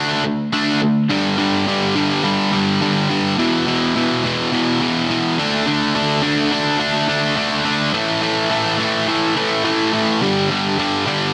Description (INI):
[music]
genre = rock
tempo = 105 BPM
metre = 4/4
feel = straight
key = unclear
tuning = A4 = 440 Hz
[part]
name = cranked stack guitar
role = solo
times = 0.0-11.3 s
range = E2 to D4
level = -18 LUFS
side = equal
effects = overdrive
[sound]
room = light reverb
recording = dense, heavily limited modern master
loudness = -18 LUFS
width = mono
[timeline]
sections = 0.0-1.1 A section; 1.1-11.3 B section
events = none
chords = 0.0 D5; 1.1 G5; 3.4 E5; 5.4 D5; 7.9 A5; 10.2 G5